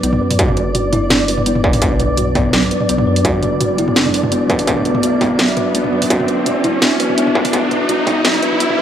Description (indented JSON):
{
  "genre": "half-time drum and bass",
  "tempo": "168 BPM",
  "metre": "4/4",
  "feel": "half-time",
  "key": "B minor",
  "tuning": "A4 = 439 Hz",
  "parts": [
    { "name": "dark analog pad", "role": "sustained chords", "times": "0.0-8.8 s", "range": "B3 to E5", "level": "-21 LUFS", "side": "left 1 dB", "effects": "lush chorus, sidechain pumping" },
    { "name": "kalimba", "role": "arpeggios", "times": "0.0-8.8 s", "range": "F#3 to B4", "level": "-19 LUFS", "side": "equal", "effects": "vintage 12-bit sampler grit, low-pass filter, tape echo" },
    { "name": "phased detuned saw bass", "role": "bass", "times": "0.0-8.8 s", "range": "F#1 to F#2", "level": "-23 LUFS", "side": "equal", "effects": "phaser" },
    { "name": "drum and bass drum kit", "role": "drums", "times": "0.0-8.8 s", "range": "hi-hat, snare drum, toms", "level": "-18 LUFS", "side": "equal", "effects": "overdrive, studio ambience" },
    { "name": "riser", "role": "sound effects", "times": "2.1-8.8 s", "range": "none", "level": "-22 LUFS", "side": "right 1 dB", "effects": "none" },
    { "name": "flickering grainy texture", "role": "texture", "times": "0.0-8.8 s", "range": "D5", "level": "-24 LUFS", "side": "right 1 dB", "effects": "built-in reverb" },
    { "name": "electronic kick drum", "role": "drums", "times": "0.4-8.1 s", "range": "none", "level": "-18 LUFS", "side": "equal", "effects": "distortion, studio ambience" }
  ],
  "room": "moderate echo chamber reverb, RT60 1.9 s",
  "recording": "dry, gritty hardware recording, high-pass filter",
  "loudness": "-13 LUFS",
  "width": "side -9 dB against mid",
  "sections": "0.0-8.8 A section",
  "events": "build-up 0.0-8.8; filter sweep on kalimba 0.0-8.8; riser 2.1-8.8",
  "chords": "0.0 Bm",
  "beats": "0.03 | 0.39 0.75 1.10 1.46 | 1.82 2.18 2.53 2.89 | 3.25 3.60 3.96 4.32 | 4.68 5.03 5.39 5.75 | 6.11 6.46 6.82 7.18 | 7.53 7.89 8.25 8.61"
}